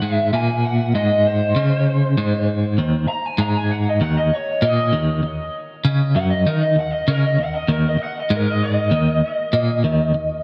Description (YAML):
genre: rock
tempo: 98 BPM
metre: 4/4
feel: straight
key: Eb dorian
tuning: A4 = 442 Hz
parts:
  - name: lead guitar through a small cranked amp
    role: melody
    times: 0.0-10.4 s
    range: Bb4 to Bb5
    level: -24 LUFS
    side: equal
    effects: wah, overdrive, lush chorus, delay
  - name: twelve-string electric guitar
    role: riff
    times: 0.0-10.4 s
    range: Eb2 to Eb3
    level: -20 LUFS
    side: equal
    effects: tremolo
room: wet plate reverb, RT60 3.8 s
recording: dreamy mix soaked in reverb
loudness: -19 LUFS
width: mono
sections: 0.0-10.4 A section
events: lead electric guitar solo 0.0-10.4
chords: 0.0 Ab; 2.8 Eb7(no3)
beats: | 0.32 0.93 1.54 2.16 | 2.77 3.38 4.00 4.61 | 5.23 5.84 6.45 7.07 | 7.68 8.29 8.91 9.52 | 10.13